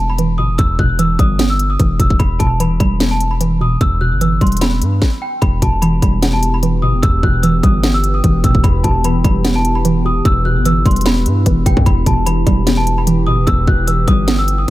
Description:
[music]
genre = hip hop, trap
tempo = 149 BPM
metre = 4/4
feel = half-time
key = E harmonic minor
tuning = A4 = 441 Hz
[part]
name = celesta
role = melody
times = 0.0-14.7 s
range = G5 to F#6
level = -20 LUFS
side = equal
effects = ping-pong delay
[part]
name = hollow square pluck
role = accompaniment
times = 0.0-14.7 s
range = E2 to B3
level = -18 LUFS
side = right 1 dB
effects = chorus
[part]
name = hard-hitting 808-style bass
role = bass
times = 0.0-14.7 s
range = D#1 to G2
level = -16 LUFS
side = equal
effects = none
[part]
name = trap drum kit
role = drums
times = 0.2-14.6 s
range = hi-hat, kick drum, snare drum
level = -16 LUFS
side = equal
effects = none
[part]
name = dark analog pad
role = sustained chords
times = 5.8-14.7 s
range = E3 to G4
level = -23 LUFS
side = equal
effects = chorus, phaser
[sound]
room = little or no reverb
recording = none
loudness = -12 LUFS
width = side -16 dB against mid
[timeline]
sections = 0.0-5.4 A section; 5.4-14.7 B section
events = stop 5.0-5.4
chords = 0.0 Em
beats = 0.18 | 0.59 0.99 1.39 1.80 | 2.20 2.60 3.00 3.41 | 3.81 4.21 4.61 5.02 | 5.42 5.82 6.22 6.63 | 7.03 7.43 7.84 8.24 | 8.64 9.04 9.45 9.85 | 10.25 10.65 11.06 11.46 | 11.86 12.27 12.67 13.07 | 13.47 13.88 14.28 14.68

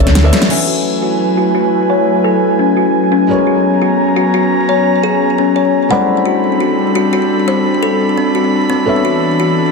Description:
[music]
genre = liquid drum and bass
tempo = 172 BPM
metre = 4/4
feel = straight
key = F# minor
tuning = A4 = 441 Hz
[part]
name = felt-muted upright piano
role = accompaniment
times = 0.0-9.7 s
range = F#3 to B5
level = -20 LUFS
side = left 1 dB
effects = ping-pong delay
[part]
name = airy breathy pad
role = sustained chords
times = 0.0-9.7 s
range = E3 to B5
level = -14 LUFS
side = right 2 dB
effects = chorus
[part]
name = kalimba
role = arpeggios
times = 0.0-9.5 s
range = C4 to F#5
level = -15 LUFS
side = left 7 dB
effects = low-pass filter, ping-pong delay
[part]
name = pop drum kit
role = drums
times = 0.1-0.6 s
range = crash cymbal, hi-hat, snare drum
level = -15 LUFS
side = left 1 dB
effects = overdrive
[sound]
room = moderate plate reverb, RT60 0.9 s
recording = dense, heavily limited modern master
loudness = -10 LUFS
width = side -3 dB against mid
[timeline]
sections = 0.5-9.7 A section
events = drum fill 0.3; band accent 0.4; filter sweep on analog synth pad 0.5-9.7; filter sweep on kalimba 0.5-9.7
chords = 0.0 Bm11; 0.5 F#m11; 3.3 G#m11; 5.9 Am11; 8.9 Bm11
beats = 0.15 | 0.50 0.85 1.20 1.55 | 1.90 2.25 2.59 2.94 | 3.29 3.64 3.99 4.34 | 4.69 5.04 5.38 5.73 | 6.08 6.43 6.78 7.13 | 7.48 7.83 8.18 8.52 | 8.87 9.22 9.57

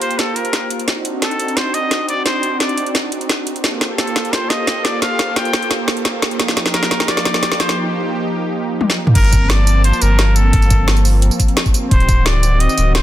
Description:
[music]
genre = liquid drum and bass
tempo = 174 BPM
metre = 4/4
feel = straight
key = G minor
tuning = A4 = 443 Hz
[part]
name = trumpet with straight mute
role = melody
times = 0.0-13.0 s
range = A4 to G5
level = -21 LUFS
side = left 1 dB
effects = ping-pong delay
[part]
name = warm analog pad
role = sustained chords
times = 0.0-13.0 s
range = Eb3 to A5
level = -22 LUFS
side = right 1 dB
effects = chorus, sidechain pumping
[part]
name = garage drum kit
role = drums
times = 0.0-13.0 s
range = crash cymbal, hi-hat, snare drum, tambourine, toms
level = -18 LUFS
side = equal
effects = overdrive, small room reverb
[part]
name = warm sub bass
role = bass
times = 9.2-13.0 s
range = D1 to G1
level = -13 LUFS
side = equal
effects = none
[part]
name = electronic kick drum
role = drums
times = 9.2-12.2 s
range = none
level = -14 LUFS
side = equal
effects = overdrive, small room reverb
[sound]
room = light reverb, digital ambience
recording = dense, heavily limited modern master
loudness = -14 LUFS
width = side -13 dB against mid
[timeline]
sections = 0.0-9.2 A section; 9.2-13.0 B section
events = build-up 0.0-9.2; drum fill 0.0-7.8, 8.8-9.2; drop 9.2-13.0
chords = 0.0 Gm11; 0.9 D7b9; 3.6 Gm11; 6.4 F9sus4; 9.2 Gm11; 11.9 D7b9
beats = 0.19 0.53 | 0.88 1.22 1.57 1.91 | 2.26 2.60 2.95 3.29 | 3.64 3.98 4.33 4.67 | 5.02 5.36 5.71 6.05 | 6.40 6.74 7.09 7.43 | 7.78 8.12 8.46 8.81 | 9.15 9.50 9.84 10.19 | 10.53 10.88 11.22 11.57 | 11.91 12.26 12.60 12.95

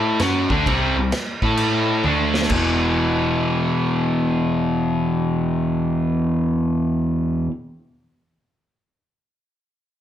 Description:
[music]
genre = blues rock power trio and southern rock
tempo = 130 BPM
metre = 4/4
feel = swing 65% on 8ths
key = unclear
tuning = A4 = 442 Hz
[part]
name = overdriven electric guitar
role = riff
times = 0.0-7.5 s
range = E2 to A4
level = -19 LUFS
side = equal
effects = none
[part]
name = vintage muted picked electric bass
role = bass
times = 0.0-7.4 s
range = E1 to A2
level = -26 LUFS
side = equal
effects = none
[part]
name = vintage drum kit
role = drums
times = 0.2-2.6 s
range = crash cymbal, kick drum, snare drum, toms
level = -26 LUFS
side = equal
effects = none
[sound]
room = moderate large studio reverb, RT60 1.1 s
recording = none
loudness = -18 LUFS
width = side -10 dB against mid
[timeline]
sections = 0.0-2.5 A section; 2.5-6.2 B section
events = drum fill 2.0-2.5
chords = 0.2 C5; 1.4 A5; 2.0 D5; 2.5 E5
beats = 0.20 | 0.66 1.12 1.58 2.05 | 2.51 2.97 3.43 3.89 | 4.35 4.81 5.27 5.73

